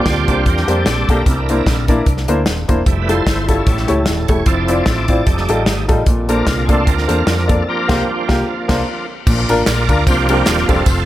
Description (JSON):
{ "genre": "uptempo gospel", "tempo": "150 BPM", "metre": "4/4", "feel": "swing 55% on 8ths", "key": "unclear", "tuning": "A4 = 440 Hz", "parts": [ { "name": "clear upright piano", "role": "accompaniment", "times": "0.0-10.8 s", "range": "A2 to D5", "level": "-19 LUFS", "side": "left 1 dB", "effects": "none" }, { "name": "bright tonewheel organ", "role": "sustained chords", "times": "0.0-11.1 s", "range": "E3 to D5", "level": "-20 LUFS", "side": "right 2 dB", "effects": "slow rotary speaker, overdrive, chorus vibrato" }, { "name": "dark French horn section", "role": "sustained chords", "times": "0.0-9.3 s", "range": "D3 to E4", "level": "-28 LUFS", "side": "right 1 dB", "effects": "none" }, { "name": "fingered electric bass", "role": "bass", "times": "0.1-11.1 s", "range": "Eb1 to F2", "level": "-19 LUFS", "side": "equal", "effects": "none" }, { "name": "natural country drum kit", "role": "drums", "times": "0.1-11.0 s", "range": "crash cymbal, hi-hat, kick drum, ride cymbal, snare drum", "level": "-17 LUFS", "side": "equal", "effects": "none" }, { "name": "tambourine and handclaps", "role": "percussion", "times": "9.3-11.0 s", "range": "none", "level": "-28 LUFS", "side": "right 5 dB", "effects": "none" } ], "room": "light reverb, small room ambience", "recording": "faint mains hum", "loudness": "-13 LUFS", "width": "side -14 dB against mid", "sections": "0.0-9.3 A section; 9.3-11.1 B section", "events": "tonewheel organ solo 0.0-9.3, 9.3-11.1; band accent 7.7-9.3", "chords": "0.0 Bb69; 1.3 C9; 2.9 Fmaj9; 3.7 A7; 4.5 Dm9/F; 5.3 F9; 6.1 Bbmaj9; 7.7 C7sus4; 8.5 C9sus4; 9.3 Bb; 10.1 C9sus4", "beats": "0.06 0.46 0.86 | 1.26 1.66 2.06 2.46 | 2.86 3.26 3.66 4.07 | 4.47 4.87 5.27 5.67 | 6.07 6.47 6.87 7.27 | 7.67 8.07 8.47 8.87 | 9.27 9.67 10.07 10.47 | 10.87" }